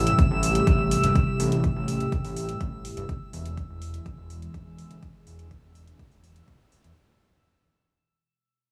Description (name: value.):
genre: progressive house.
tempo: 124 BPM.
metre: 4/4.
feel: straight.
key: unclear.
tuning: A4 = 441 Hz.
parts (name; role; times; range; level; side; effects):
evolving wavetable pad; sustained chords; 0.0-6.9 s; B2 to G#4; -30 LUFS; equal; chorus, built-in reverb, phaser, sidechain pumping.
fat analog bass; bass; 0.0-6.9 s; D1 to E2; -32 LUFS; equal; sidechain pumping.
drifting glass-harmonics texture; texture; 0.0-7.0 s; E6; -33 LUFS; equal; chorus, built-in reverb, sidechain pumping.
electronic hi-hat; drums; 0.1-6.9 s; none; -39 LUFS; equal; overdrive.
electronic kick drum; drums; 0.2-6.6 s; none; -26 LUFS; equal; overdrive.
room: light reverb.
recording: none.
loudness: -25 LUFS.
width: mono.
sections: 0.0-7.0 A section.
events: fade-out 0.0-7.0.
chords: 0.0 Am7; 3.1 E.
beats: 0.19 0.67 | 1.16 1.64 2.12 2.61 | 3.09 3.58 4.06 4.54 | 5.03 5.51 5.99 6.48.